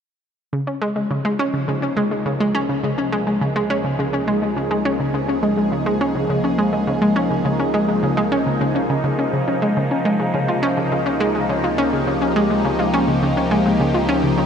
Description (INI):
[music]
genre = ambient, sequencer-driven space music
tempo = 104 BPM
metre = 4/4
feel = straight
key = unclear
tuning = A4 = 444 Hz
[part]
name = phased analog pad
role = sustained chords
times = 1.0-14.5 s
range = C3 to Ab4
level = -21 LUFS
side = equal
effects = phaser, chorus
[part]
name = analog pluck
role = riff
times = 0.5-14.4 s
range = Db3 to F4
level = -19 LUFS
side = equal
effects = chorus, ping-pong delay
[part]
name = round analog bass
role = bass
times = 0.5-14.5 s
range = Db2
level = -37 LUFS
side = equal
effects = none
[sound]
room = wet huge ambient reverb, RT60 7.7 s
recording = in a vast, echoing space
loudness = -17 LUFS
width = side -7 dB against mid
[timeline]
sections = 0.5-14.5 A section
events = fade-in on analog synth bass 0.5-14.5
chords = 0.5 Db